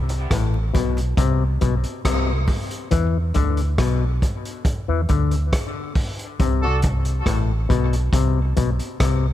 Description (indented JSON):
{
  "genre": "dub reggae",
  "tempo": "69 BPM",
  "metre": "4/4",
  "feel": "straight",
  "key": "unclear",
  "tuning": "A4 = 440 Hz",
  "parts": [
    { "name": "vintage muted fingered electric bass", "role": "bass", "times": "0.0-9.3 s", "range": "A1 to E2", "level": "-21 LUFS", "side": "equal", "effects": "none" },
    { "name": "crunchy breakbeat drum kit", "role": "drums", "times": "0.1-9.2 s", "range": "hi-hat, kick drum, rim click", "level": "-22 LUFS", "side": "equal", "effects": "none" },
    { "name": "bongos", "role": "percussion", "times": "0.1-2.7 s", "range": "none", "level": "-45 LUFS", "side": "right 4 dB", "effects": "none" },
    { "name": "mellow clav", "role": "riff", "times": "0.3-9.3 s", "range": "A2 to E3", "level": "-25 LUFS", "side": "left 9 dB", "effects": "auto-wah, tape echo" },
    { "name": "clear horn section", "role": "second line", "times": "6.6-6.8 s", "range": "D4 to A4", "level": "-28 LUFS", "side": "right 1 dB", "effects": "tape echo" }
  ],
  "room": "studio ambience",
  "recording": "none",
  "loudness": "-18 LUFS",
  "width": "side -13 dB against mid",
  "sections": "0.0-9.3 A section",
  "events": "break 0.0-2.9; part muted 2.9-9.3",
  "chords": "0.0 Amadd9; 2.9 E5; 6.4 Amadd9"
}